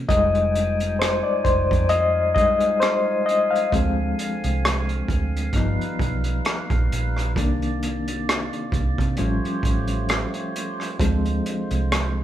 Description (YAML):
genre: R&B, neo-soul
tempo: 66 BPM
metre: 4/4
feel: swing 54% on 16ths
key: unclear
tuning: A4 = 440 Hz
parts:
  - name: overdriven reed electric piano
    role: accompaniment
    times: 0.0-12.2 s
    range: Eb3 to F5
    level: -23 LUFS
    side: left 2 dB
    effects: fast tremolo
  - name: vintage muted fingered electric bass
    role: bass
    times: 0.0-12.2 s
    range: F1 to C3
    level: -25 LUFS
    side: right 1 dB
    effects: none
  - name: tonewheel organ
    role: sustained chords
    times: 0.1-12.2 s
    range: C3 to Ab5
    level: -32 LUFS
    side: right 2 dB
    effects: overdrive, slow rotary speaker
  - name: crunchy breakbeat drum kit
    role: drums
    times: 0.1-12.1 s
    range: hi-hat, kick drum, rim click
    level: -25 LUFS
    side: right 1 dB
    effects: none
room: moderate studio reverb, RT60 0.9 s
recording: band playing live in one room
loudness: -20 LUFS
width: side -11 dB against mid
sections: 0.0-12.2 A section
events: reed electric piano solo 0.0-12.2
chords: 0.1 Fm9; 3.7 Dm7b5; 5.5 G7alt; 7.4 Cm9; 9.2 A7alt; 11.0 Dm7b5